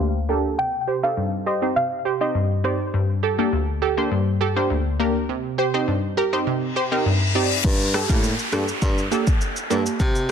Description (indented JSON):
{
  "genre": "dancehall",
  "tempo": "102 BPM",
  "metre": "4/4",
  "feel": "straight",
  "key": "G minor",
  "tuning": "A4 = 436 Hz",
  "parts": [
    { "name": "analog pluck", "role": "accompaniment", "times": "0.0-10.3 s", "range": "D2 to D5", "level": "-21 LUFS", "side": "right 1 dB", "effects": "chorus, low-pass filter" },
    { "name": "soft round pluck", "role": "melody", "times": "0.6-2.8 s", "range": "C5 to G5", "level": "-25 LUFS", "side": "equal", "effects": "chorus, low-pass filter, ping-pong delay" },
    { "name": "reverse cymbal and downlifter", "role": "sound effects", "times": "6.7-10.3 s", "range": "none", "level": "-27 LUFS", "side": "left 2 dB", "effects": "none" },
    { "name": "breathy baritone saxophone", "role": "bass", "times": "7.6-10.3 s", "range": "G2 to C3", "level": "-24 LUFS", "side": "equal", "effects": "none" },
    { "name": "afro-pop drum kit", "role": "drums", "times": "7.6-10.3 s", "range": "crash cymbal, kick drum, rim click, shaker", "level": "-22 LUFS", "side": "equal", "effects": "soft clipping on snare" }
  ],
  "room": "light reverb, digital ambience",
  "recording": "dense, heavily limited modern master",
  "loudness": "-19 LUFS",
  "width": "side -7 dB against mid",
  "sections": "0.0-7.6 A section; 7.6-10.3 B section",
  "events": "filter sweep 0.0-7.6; reverse cymbal 6.7-7.6",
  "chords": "0.0 Gmadd9; 0.6 Cm; 2.9 Gmadd9; 5.3 Cm; 7.6 Gmadd9"
}